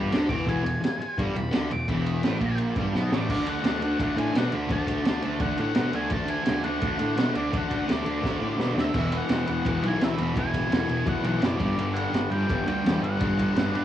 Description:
garage rock duo or trio; 170 BPM; 4/4; straight; A4 = 439 Hz
octave-fuzz lead guitar; melody; 0.0-13.8 s; D5 to D6; -33 LUFS; left 1 dB; distortion, cassette tape, tape echo
fuzz guitar; riff; 0.0-13.8 s; E2 to D4; -27 LUFS; equal; distortion, cassette tape
fuzz picked electric bass; bass; 0.0-13.8 s; E1 to B2; -29 LUFS; equal; overdrive
crunchy breakbeat drum kit; drums; 0.1-13.8 s; crash cymbal, kick drum, ride cymbal, snare drum; -29 LUFS; equal; cassette tape
little or no reverb; home recording on cassette, small room ambience; -23 LUFS; side -11 dB against mid
0.0-3.3 A section; 3.3-13.8 B section
lead electric guitar solo 0.0-3.3; drum fill 2.9-3.3, 8.2-8.9
0.0 E; 3.3 D; 8.9 E; 11.6 G5
0.11 | 0.47 0.82 1.17 1.52 | 1.88 2.23 2.58 2.93 | 3.29 3.64 3.99 4.34 | 4.70 5.05 5.40 5.76 | 6.11 6.46 6.82 7.17 | 7.52 7.88 8.23 8.59 | 8.94 9.30 9.65 10.01 | 10.36 10.72 11.07 11.43 | 11.78 12.14 12.49 12.85 | 13.21 13.56

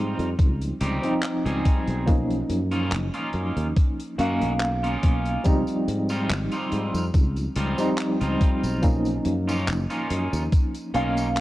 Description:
vaporwave; 71 BPM; 4/4; swing 53% on 16ths; Db lydian; A4 = 440 Hz
tine electric piano; accompaniment; 0.0-11.4 s; F3 to F5; -26 LUFS; equal; medium tremolo, wide subtle chorus, analog delay
electric guitar at the edge of break-up; riff; 0.0-11.3 s; G3 to Ab4; -31 LUFS; right 1 dB; lush chorus, analog delay
sustaining fretless electric bass; bass; 0.0-11.4 s; Gb1 to Ab2; -27 LUFS; equal
big rock drum kit; drums; 0.2-11.4 s; handclaps, hi-hat, tambourine; -35 LUFS; equal
electronic kick drum; drums; 0.4-10.7 s; -20 LUFS; equal
light reverb, studio reverb; cassette tape; -21 LUFS; side -16 dB against mid
0.0-11.4 A section
0.0 Dbmaj9#11; 2.1 Cbmaj9#11; 5.5 Dbmaj9#11; 8.8 Cbmaj9#11
0.39 1.23 | 2.08 2.92 3.77 4.61 | 5.46 6.30 7.14 7.99 | 8.84 9.68 10.53 11.37

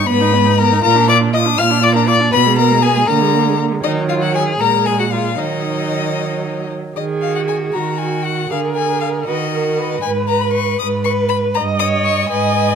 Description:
quick classical-period movement for string quartet; 79 BPM (dotted quarters); 6/8; rubato; Eb minor; A4 = 438 Hz
clear violin; melody; 0.0-12.8 s; Eb5 to F6; -18 LUFS; left 11 dB
rich viola; accompaniment; 0.0-12.8 s; Gb3 to Eb5; -20 LUFS; right 3 dB
rich violin; second line; 0.1-12.8 s; Eb4 to F5; -21 LUFS; left 3 dB
rich cello; bass; 0.1-12.8 s; G2 to Eb3; -19 LUFS; right 5 dB
moderate recital hall reverb, RT60 1.7 s; close, detailed microphones; -14 LUFS; side -7 dB against mid
0.0-7.0 A section; 7.0-12.8 A section
0.1 Abm; 0.8 Bb; 2.3 Abm/Cb; 3.1 Bb7/D; 3.8 Ebm; 4.6 Gbmaj9/Bb; 5.4 Ebm; 8.5 Bb7/D; 9.3 Ebm; 10.0 Abm; 11.6 Eb7/G
0.07 | 0.83 1.58 | 2.33 3.08 | 3.84 4.60 | 5.38 6.17 | 6.96 7.74 | 8.50 9.26 | 10.02 10.79 | 11.55 12.31

